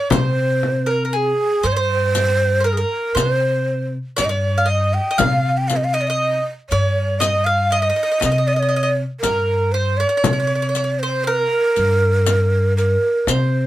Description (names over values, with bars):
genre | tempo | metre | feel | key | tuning
Arabic maqam ensemble | 118 BPM (eighths) | 10/8 | straight | C maqam bayati | A4 = 439 Hz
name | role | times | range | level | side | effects
breathy mellow ney | melody | 0.0-13.7 s | Ab4 to G5 | -19 LUFS | right 2 dB | none
mandolin | second line | 0.0-13.7 s | Ab4 to F5 | -23 LUFS | right 1 dB | none
upright bass | bass | 0.1-13.7 s | G2 to C3 | -20 LUFS | left 1 dB | none
frame drum | percussion | 0.1-13.5 s | none | -23 LUFS | left 4 dB | none
riq | percussion | 0.1-13.5 s | none | -26 LUFS | left 8 dB | none
room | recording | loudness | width
light reverb | close, detailed microphones | -16 LUFS | side -14 dB against mid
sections
0.0-13.7 A section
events
none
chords
none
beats
| 0.12 0.63 1.13 1.64 2.15 2.65 3.16 3.67 4.17 4.68 | 5.18 5.69 6.20 6.70 7.21 7.72 8.22 8.73 9.23 9.74 | 10.25 10.75 11.26 11.77 12.27 12.78 13.29